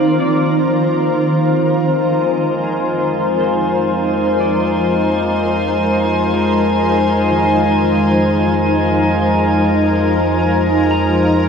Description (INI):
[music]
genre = ambient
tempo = 60 BPM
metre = 4/4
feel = straight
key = F dorian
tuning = A4 = 441 Hz
[part]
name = shimmering ambient pad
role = sustained chords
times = 0.0-11.5 s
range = Eb3 to C5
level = -15 LUFS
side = equal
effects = chorus, built-in reverb, shimmer reverb
[part]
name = electric guitar at the edge of break-up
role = arpeggios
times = 0.0-11.5 s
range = Eb3 to Bb5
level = -28 LUFS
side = equal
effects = tape echo, shimmer reverb
[part]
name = organ-like drone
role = drone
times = 0.0-11.5 s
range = F3 to F4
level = -24 LUFS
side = right 1 dB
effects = ensemble chorus, built-in reverb
[part]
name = warm sub bass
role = bass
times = 1.6-11.5 s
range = F2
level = -24 LUFS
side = equal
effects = none
[part]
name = drifting glass-harmonics texture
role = texture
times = 2.2-11.5 s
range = Ab3 to Ab5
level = -19 LUFS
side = left 1 dB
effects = chorus, built-in reverb, shimmer reverb
[sound]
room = wet cathedral reverb, RT60 6.0 s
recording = worn, warbling old tape, cassette tape, warbly pitch drift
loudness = -13 LUFS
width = side -6 dB against mid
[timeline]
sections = 0.0-1.6 A section; 1.6-11.5 B section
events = fade-in on clean electric guitar 1.6-11.5; fade-in on sub bass 1.6-11.5; fade-out on synth drone 1.6-11.5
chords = 0.0 Eb5; 1.6 Fm7